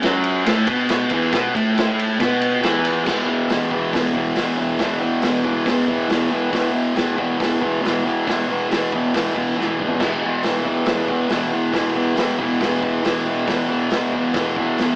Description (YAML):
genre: garage rock duo or trio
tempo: 138 BPM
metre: 4/4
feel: straight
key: unclear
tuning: A4 = 438 Hz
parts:
  - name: thick fuzz guitar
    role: riff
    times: 0.0-15.0 s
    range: E2 to B3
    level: -18 LUFS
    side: equal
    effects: distortion
  - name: vintage drum kit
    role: drums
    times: 0.0-14.9 s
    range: crash cymbal, hi-hat, kick drum, ride cymbal, snare drum, toms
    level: -23 LUFS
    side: equal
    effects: none
room: moderate studio reverb, RT60 0.5 s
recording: band playing live in one room, AM radio sound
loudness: -17 LUFS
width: side -26 dB against mid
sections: 0.0-3.1 A section; 3.1-15.0 B section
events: drum fill 9.6-10.0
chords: 0.0 E5